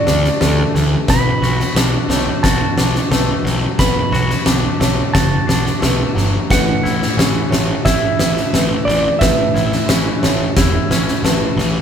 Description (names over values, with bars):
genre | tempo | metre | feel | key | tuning
post-rock | 89 BPM | 4/4 | straight | unclear | A4 = 440 Hz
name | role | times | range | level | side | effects
clean lap steel guitar | melody | 0.0-11.2 s | D5 to B5 | -22 LUFS | right 2 dB | none
felt-muted upright piano | arpeggios | 0.0-11.8 s | A4 to C#5 | -27 LUFS | right 1 dB | none
twangy electric guitar | arpeggios | 0.0-11.8 s | A2 to F#4 | -23 LUFS | left 5 dB | none
fuzz picked electric bass | bass | 0.1-11.8 s | E1 to D2 | -20 LUFS | equal | overdrive
oversized low-tuned drum kit | drums | 0.1-11.7 s | kick drum, snare drum | -16 LUFS | equal | none
room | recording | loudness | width
moderate stone room reverb, RT60 1.0 s | band playing live in one room | -13 LUFS | side -8 dB against mid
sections
0.0-11.8 A section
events
none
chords
0.0 Dadd9; 1.1 Bm7; 6.5 A